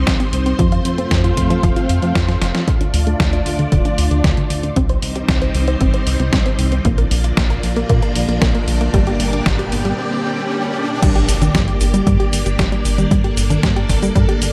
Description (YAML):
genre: italo disco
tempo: 115 BPM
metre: 4/4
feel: straight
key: G minor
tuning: A4 = 442 Hz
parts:
  - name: string machine, full ensemble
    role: sustained chords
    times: 0.0-14.5 s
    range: G3 to D5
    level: -24 LUFS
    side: equal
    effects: ensemble chorus
  - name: chorused synth bass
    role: bass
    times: 0.0-14.5 s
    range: D1 to Bb2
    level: -21 LUFS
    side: equal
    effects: none
  - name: unison pluck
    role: arpeggios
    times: 0.1-14.4 s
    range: D3 to C5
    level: -25 LUFS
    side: equal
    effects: cassette tape, digital delay
  - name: detuned 8-bit digital drum machine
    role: drums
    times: 0.1-14.5 s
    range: cabasa, congas, crash cymbal, hi-hat, snare drum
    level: -24 LUFS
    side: equal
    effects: none
  - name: electronic kick drum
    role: drums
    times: 0.1-14.3 s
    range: none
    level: -21 LUFS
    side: equal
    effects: none
  - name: riser, swell and impact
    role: sound effects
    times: 6.0-13.1 s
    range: none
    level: -30 LUFS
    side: equal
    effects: none
room: light reverb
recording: dark, warm production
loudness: -17 LUFS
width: mono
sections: 0.0-2.7 A section; 2.7-11.0 B section; 11.0-14.5 C section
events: drum fill 2.3-2.7; band accent 2.5; filter sweep on synth arpeggio sound 2.7-11.0; riser 6.0-11.0; break 10.0-11.0; swell 10.0-11.0; impact 11.0-13.1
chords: 0.0 Cm; 0.6 F; 2.7 Dm; 4.8 Cm; 6.9 Bb; 8.9 Gm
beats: 0.07 | 0.59 1.11 1.63 2.15 | 2.68 3.20 3.72 4.24 | 4.76 5.29 5.81 6.33 | 6.85 7.37 7.89 8.42 | 8.94 9.46 9.98 10.50 | 11.03 11.55 12.07 12.59 | 13.11 13.63 14.15